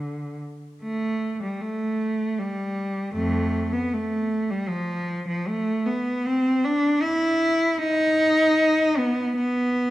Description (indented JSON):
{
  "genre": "classical, free, expressive piece for unaccompanied cello",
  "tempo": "77 BPM",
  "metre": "3/4",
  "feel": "uneven beats, rubato",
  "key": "unclear",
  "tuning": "A4 = 440 Hz",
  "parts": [
    { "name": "clear cello", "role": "solo", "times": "0.0-9.9 s", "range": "F2 to E4", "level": "-22 LUFS", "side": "equal", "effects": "none" }
  ],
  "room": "moderate recital hall reverb, RT60 1.6 s",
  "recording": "dark, warm production",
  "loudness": "-21 LUFS",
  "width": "side -15 dB against mid",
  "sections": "0.0-9.9 A section",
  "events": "none",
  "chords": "none"
}